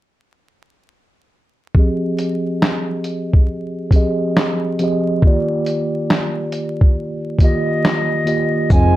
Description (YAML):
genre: lo-fi hip hop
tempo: 69 BPM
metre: 4/4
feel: swing 65% on 16ths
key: F dorian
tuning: A4 = 440 Hz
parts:
  - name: mellow tine electric piano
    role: accompaniment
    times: 1.7-9.0 s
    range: Eb3 to Eb5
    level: -19 LUFS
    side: right 1 dB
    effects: medium stereo tremolo, low-pass filter
  - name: lo-fi sampler-style drum kit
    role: drums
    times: 1.7-9.0 s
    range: handclaps, hi-hat, kick drum, shaker, snare drum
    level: -14 LUFS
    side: equal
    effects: none
  - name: silver concert flute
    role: melody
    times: 7.4-9.0 s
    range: Eb5 to Ab5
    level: -21 LUFS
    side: equal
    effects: low-pass filter
  - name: string machine, violins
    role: sustained chords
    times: 8.7-9.0 s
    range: Eb3 to F4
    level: -22 LUFS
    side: equal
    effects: ensemble chorus, low-pass filter
  - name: bright double bass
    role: bass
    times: 8.7-9.0 s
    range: F1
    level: -14 LUFS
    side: equal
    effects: none
room: light reverb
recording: dark, warm production, vinyl crackle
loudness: -15 LUFS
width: side -15 dB against mid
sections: 1.7-8.7 A section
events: filter sweep on tine electric piano 1.7-8.7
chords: 1.7 Fm7; 5.2 Ebmaj7